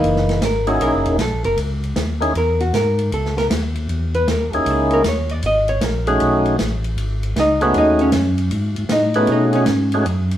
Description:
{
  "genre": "soul jazz organ trio",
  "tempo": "156 BPM",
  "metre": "4/4",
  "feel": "swing 65% on 8ths",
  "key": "F# mixolydian",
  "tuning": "A4 = 438 Hz",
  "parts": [
    { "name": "archtop guitar, miked and amplified", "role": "accompaniment", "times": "0.0-10.0 s", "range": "E3 to D#5", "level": "-19 LUFS", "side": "equal", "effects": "none" },
    { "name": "tonewheel organ", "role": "bass", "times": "0.0-10.4 s", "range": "E1 to B2", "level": "-21 LUFS", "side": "equal", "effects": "slow rotary speaker" },
    { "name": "vintage drum kit", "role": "drums", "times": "0.0-10.4 s", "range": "hi-hat, ride cymbal, snare drum", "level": "-26 LUFS", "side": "equal", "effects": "none" },
    { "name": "percussive tonewheel organ", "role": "melody", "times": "0.7-10.1 s", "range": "A3 to G#4", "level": "-18 LUFS", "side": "equal", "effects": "slow rotary speaker" }
  ],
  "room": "moderate studio reverb, RT60 0.9 s",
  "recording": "heard from further back in the room",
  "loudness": "-16 LUFS",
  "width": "side -11 dB against mid",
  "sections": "0.0-10.4 A section",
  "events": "hollow-body jazz guitar solo 0.0-10.4",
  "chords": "0.0 F#13; 6.2 B13"
}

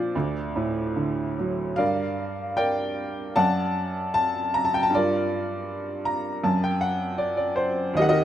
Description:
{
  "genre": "classical, lyrical solo piano",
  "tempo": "72-80 BPM",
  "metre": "4/4",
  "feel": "rubato",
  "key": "G harmonic minor",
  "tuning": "A4 = 439 Hz",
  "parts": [
    { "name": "clear upright piano", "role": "solo", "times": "0.0-8.2 s", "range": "D2 to Bb5", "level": "-22 LUFS", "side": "equal", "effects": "none" }
  ],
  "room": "moderate recital hall reverb, RT60 1.5 s",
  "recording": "none",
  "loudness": "-23 LUFS",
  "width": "side -11 dB against mid",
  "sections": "0.0-1.8 A section; 1.8-8.2 B section",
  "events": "upright piano fill 5.7-8.0",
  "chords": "0.1 D; 1.8 Gm7; 3.4 D/F#; 4.9 Gm7; 6.5 D/F#"
}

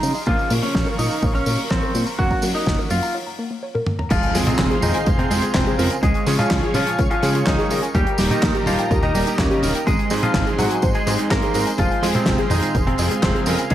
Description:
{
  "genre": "italo disco",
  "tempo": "125 BPM",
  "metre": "4/4",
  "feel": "straight",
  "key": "unclear",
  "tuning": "A4 = 439 Hz",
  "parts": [
    { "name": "lightly driven lead guitar", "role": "melody", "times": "0.0-13.7 s", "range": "C3 to Bb4", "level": "-24 LUFS", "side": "equal", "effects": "vintage 12-bit sampler grit, tape echo" },
    { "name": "lush unison pad", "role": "sustained chords", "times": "0.0-13.7 s", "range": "G4 to Db6", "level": "-28 LUFS", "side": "equal", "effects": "chorus" },
    { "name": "warbly dusty pluck", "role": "arpeggios", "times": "0.0-13.7 s", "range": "G3 to Bb5", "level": "-28 LUFS", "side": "left 1 dB", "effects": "chorus, cassette tape, digital delay" },
    { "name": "bright electric grand piano", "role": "stabs", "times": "0.0-13.6 s", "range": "Ab2 to Bb4", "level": "-26 LUFS", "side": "right 4 dB", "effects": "none" },
    { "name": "chorused synth bass", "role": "bass", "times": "0.0-13.7 s", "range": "Eb1 to Db3", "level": "-23 LUFS", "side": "equal", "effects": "none" },
    { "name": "damped 70s drum kit", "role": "drums", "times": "0.0-13.7 s", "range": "crash cymbal, handclaps, hi-hat, snare drum, tambourine, toms", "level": "-24 LUFS", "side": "left 1 dB", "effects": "gated reverb" },
    { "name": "electronic kick drum", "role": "drums", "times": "0.3-13.7 s", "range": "none", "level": "-23 LUFS", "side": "equal", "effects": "none" },
    { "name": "impact", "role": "sound effects", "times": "4.2-6.0 s", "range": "none", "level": "-29 LUFS", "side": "equal", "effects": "none" }
  ],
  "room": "light reverb, small room ambience",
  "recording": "vinyl crackle",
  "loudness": "-17 LUFS",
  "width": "side -12 dB against mid",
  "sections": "0.0-4.1 A section; 4.1-13.7 B section",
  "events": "break 3.1-4.1; drum fill 3.7-4.1; impact 4.1-6.0",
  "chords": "0.3 Bbm; 2.2 Gb; 4.1 Fm; 6.0 Db; 7.9 Eb; 9.9 Ab; 11.8 Fm"
}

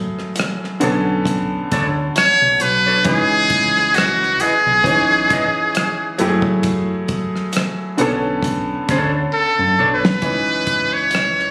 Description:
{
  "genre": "R&B, neo-soul",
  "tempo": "67 BPM",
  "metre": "4/4",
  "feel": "swing 55% on 16ths",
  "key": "C# phrygian",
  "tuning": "A4 = 444 Hz",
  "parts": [
    { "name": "bright upright piano", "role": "accompaniment", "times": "0.0-11.5 s", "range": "D3 to C#5", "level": "-24 LUFS", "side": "equal", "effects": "none" },
    { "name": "damped 70s drum kit", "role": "drums", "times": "0.2-11.5 s", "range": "hi-hat, kick drum, rim click, snare drum", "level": "-23 LUFS", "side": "equal", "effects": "none" },
    { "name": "clean electric guitar", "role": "second line", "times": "0.8-9.9 s", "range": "A3 to D#5", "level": "-24 LUFS", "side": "equal", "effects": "slapback echo" },
    { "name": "deep dub fingered electric bass", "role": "bass", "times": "0.8-11.5 s", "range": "F#1 to F#2", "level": "-26 LUFS", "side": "equal", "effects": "none" },
    { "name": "trumpet with metal mute", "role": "melody", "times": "2.2-11.5 s", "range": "F#4 to C#5", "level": "-17 LUFS", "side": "equal", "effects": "slapback echo" }
  ],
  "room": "light reverb, studio reverb",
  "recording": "recorded on a phone in the room",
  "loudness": "-17 LUFS",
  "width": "mono",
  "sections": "0.0-11.5 A section",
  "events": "drum fill 9.3-10.2",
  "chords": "0.0 F#m9; 0.8 Bm9; 3.1 C#m9; 6.2 F#m9; 8.0 Bm9; 10.2 C#m9"
}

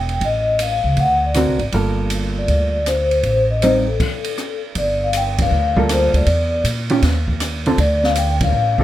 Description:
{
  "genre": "jazz, small-group swing and bop",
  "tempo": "159 BPM",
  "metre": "4/4",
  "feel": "swing 67% on 8ths",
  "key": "G minor",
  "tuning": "A4 = 440 Hz",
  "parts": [
    { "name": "vibraphone with soft mallets", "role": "melody", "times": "0.0-8.8 s", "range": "A4 to G5", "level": "-19 LUFS", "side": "left 2 dB", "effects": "plate reverb" },
    { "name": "upright bass", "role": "bass", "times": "0.0-8.8 s", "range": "E1 to Bb2", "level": "-19 LUFS", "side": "equal", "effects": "none" },
    { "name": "open jazz drum kit", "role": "drums", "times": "0.1-8.8 s", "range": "crash cymbal, hi-hat, kick drum, ride cymbal, rim click, snare drum", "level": "-24 LUFS", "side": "right 1 dB", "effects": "none" },
    { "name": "hollow-body jazz guitar", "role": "accompaniment", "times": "1.4-8.8 s", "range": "D3 to A#4", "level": "-19 LUFS", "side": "right 2 dB", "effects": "none" }
  ],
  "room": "light reverb",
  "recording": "none",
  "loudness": "-15 LUFS",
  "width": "side -13 dB against mid",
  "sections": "0.0-4.8 A section; 4.8-8.8 B section",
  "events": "stop 4.0-4.8; band accent 5.3, 8.3",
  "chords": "0.2 Aaug; 1.0 Daug7; 1.7 Gm9; 3.2 Am7b5; 4.0 N.C.; 4.8 Gm9; 6.3 Em7; 7.0 Ebsus2; 7.8 Dm"
}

